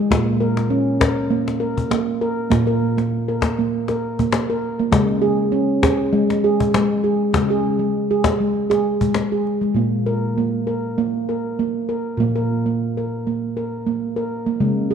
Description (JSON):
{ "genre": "world meditative, meditative tuned percussion", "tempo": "99 BPM", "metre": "4/4", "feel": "swing 54% on 16ths", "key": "unclear", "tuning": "A4 = 437 Hz", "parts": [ { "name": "handpan", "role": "arpeggios", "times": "0.0-14.9 s", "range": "Bb2 to Bb4", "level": "-18 LUFS", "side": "right 1 dB", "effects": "none" }, { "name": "cajon", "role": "percussion", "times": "0.1-9.7 s", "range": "none", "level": "-22 LUFS", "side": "left 4 dB", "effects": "none" } ], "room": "wet echo chamber reverb, RT60 1.8 s, studio ambience", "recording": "dark, warm production", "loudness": "-18 LUFS", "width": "side -7 dB against mid", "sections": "0.0-9.8 A section; 9.8-14.9 B section", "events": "none", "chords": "0.1 N.C.; 4.9 Db5; 9.8 N.C." }